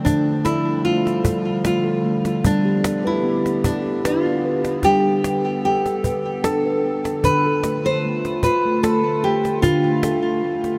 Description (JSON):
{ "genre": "world meditative, meditative tuned percussion", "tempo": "75 BPM", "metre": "3/4", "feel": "straight", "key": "D dorian", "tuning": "A4 = 442 Hz", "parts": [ { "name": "nylon-string guitar", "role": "melody", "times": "0.0-10.8 s", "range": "D4 to C5", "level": "-23 LUFS", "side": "equal", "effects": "delay" }, { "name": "warbly tape-like pad", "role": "sustained chords", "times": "0.0-10.8 s", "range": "D3 to A4", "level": "-28 LUFS", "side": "equal", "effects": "chorus, built-in reverb" }, { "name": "steel tongue drum", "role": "arpeggios", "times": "0.0-10.8 s", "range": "D3 to B4", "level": "-25 LUFS", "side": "equal", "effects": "none" }, { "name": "cajon", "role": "percussion", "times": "0.1-10.8 s", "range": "none", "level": "-26 LUFS", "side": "equal", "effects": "none" } ], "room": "wet huge ambient reverb, RT60 7.7 s", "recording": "in a vast, echoing space", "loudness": "-20 LUFS", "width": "mono", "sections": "0.0-10.8 A section", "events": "none", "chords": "0.0 Dm; 2.5 G; 7.2 Dm" }